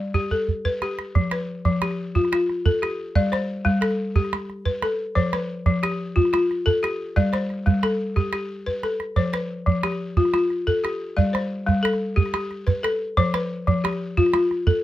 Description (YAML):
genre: west african traditional, West African string and xylophone music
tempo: 120 BPM (dotted quarters)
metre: 12/8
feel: straight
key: F lydian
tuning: A4 = 442 Hz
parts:
  - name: balafon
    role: arpeggios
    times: 0.0-14.8 s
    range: F3 to D5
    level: -22 LUFS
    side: left 2 dB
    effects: none
  - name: calabash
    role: percussion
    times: 0.1-14.8 s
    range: none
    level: -21 LUFS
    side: right 3 dB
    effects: none
room: light reverb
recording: close, detailed microphones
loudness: -20 LUFS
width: side -14 dB against mid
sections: 0.0-1.2 A section; 1.2-14.8 B section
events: drum fill 0.3-1.2, 8.7-9.2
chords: 0.0 G; 1.2 F; 3.2 G; 5.2 F; 7.2 G; 9.2 F; 11.2 G; 13.2 F